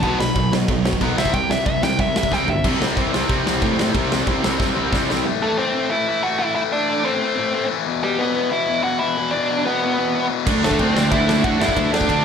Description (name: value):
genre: punk rock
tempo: 184 BPM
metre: 4/4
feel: straight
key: unclear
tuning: A4 = 441 Hz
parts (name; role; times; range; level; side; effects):
- nasal lead guitar with a parked wah; melody; 0.0-2.6, 5.4-12.2 s; G3 to B5; -21 LUFS; right 1 dB; overdrive, slapback echo
- distorted electric guitar; riff; 0.0-12.2 s; E2 to D4; -23 LUFS; left 10 dB; overdrive, slapback echo
- fuzz guitar; riff; 0.0-5.3, 10.5-12.2 s; B2 to D4; -27 LUFS; right 1 dB; distortion
- tight distorted guitar; riff; 0.0-5.2, 10.5-12.2 s; B2 to D4; -25 LUFS; right 15 dB; distortion, slapback echo
- fuzz picked electric bass; bass; 0.0-5.2, 10.5-12.2 s; G1 to B2; -23 LUFS; right 1 dB; overdrive
- big rock drum kit; drums; 0.0-5.2, 10.5-12.2 s; crash cymbal, kick drum, ride cymbal, snare drum, toms; -23 LUFS; right 1 dB; none
room: little or no reverb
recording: live gig heard through the venue's PA, club reverb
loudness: -17 LUFS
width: side -7 dB against mid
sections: 0.0-2.6 A section; 2.6-5.3 B section; 5.3-12.2 C section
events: lead electric guitar solo 0.0-2.6; drum fill 2.3-2.6, 4.6-5.3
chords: 0.0 B5; 1.2 C5; 5.3 Am; 7.9 E5; 10.5 D5